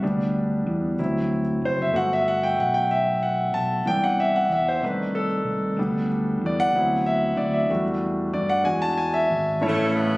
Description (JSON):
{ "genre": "slow gospel", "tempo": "63 BPM (dotted quarters)", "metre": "6/8", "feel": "straight", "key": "G major", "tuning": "A4 = 439 Hz", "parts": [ { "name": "clear grand piano", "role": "accompaniment", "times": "0.0-10.2 s", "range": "A2 to A5", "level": "-22 LUFS", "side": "equal", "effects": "none" }, { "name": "fingered electric bass", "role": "bass", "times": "0.0-10.2 s", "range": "F#1 to G2", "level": "-27 LUFS", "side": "equal", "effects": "none" }, { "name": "bright saxophone section", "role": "melody", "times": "9.6-10.2 s", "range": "C#3 to B3", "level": "-24 LUFS", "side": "right 1 dB", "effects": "none" } ], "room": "light reverb", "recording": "recorded on a phone in the room, club reverb, compression", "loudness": "-20 LUFS", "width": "side -22 dB against mid", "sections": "0.0-9.6 A section", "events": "grand piano solo 0.0-9.6", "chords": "0.0 G/D; 1.0 D9; 1.9 Gmaj9; 3.9 Cmaj7; 4.8 Cm6; 5.8 G/D; 6.7 D13; 7.7 Em11; 8.7 E7; 9.6 A" }